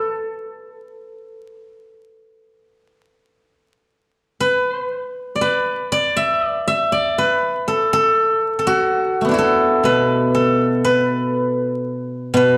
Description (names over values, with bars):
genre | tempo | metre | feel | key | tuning
chinese traditional, Chinese solo plucked strings | 54-63 BPM | 4/4 | rubato | A zhi mode | A4 = 444 Hz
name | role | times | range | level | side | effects
steel-string zither | solo | 0.0-12.6 s | B2 to E5 | -19 LUFS | equal | none
room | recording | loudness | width
wet recital hall reverb, RT60 1.4 s | dark, warm production, vinyl crackle | -18 LUFS | mono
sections
0.0-3.9 A section; 3.9-12.6 B section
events
none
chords
none